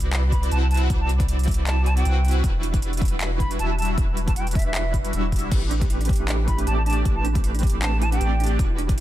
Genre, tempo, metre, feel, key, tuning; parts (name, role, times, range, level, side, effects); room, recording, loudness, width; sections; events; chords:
future bass; 156 BPM; 4/4; swing 56% on 16ths, half-time; A4 = 440 Hz
big bright polysynth; riff; 0.0-9.0 s; G3 to F#5; -28 LUFS; right 1 dB; lush chorus, sidechain pumping
saturated sub bass; bass; 0.0-9.0 s; E1 to C2; -22 LUFS; equal; sidechain pumping
big-room dance drum kit; drums; 0.0-9.0 s; crash cymbal, handclaps, hi-hat; -32 LUFS; equal; studio reverb
hollow concert flute; melody; 0.3-8.5 s; E5 to B5; -31 LUFS; right 1 dB; vintage 12-bit sampler grit, sidechain pumping, dub echo
electronic kick drum; drums; 0.3-9.0 s; -23 LUFS; equal; overdrive, studio reverb
thumb-piano-like synth pluck; arpeggios; 5.5-9.0 s; D4 to G4; -33 LUFS; right 5 dB; chorus, sidechain pumping, digital delay
digital ambience; dense, heavily limited modern master; -19 LUFS; side -14 dB against mid
0.0-9.0 A section
0.0 Cmaj9#11; 2.4 Em9; 5.5 Am11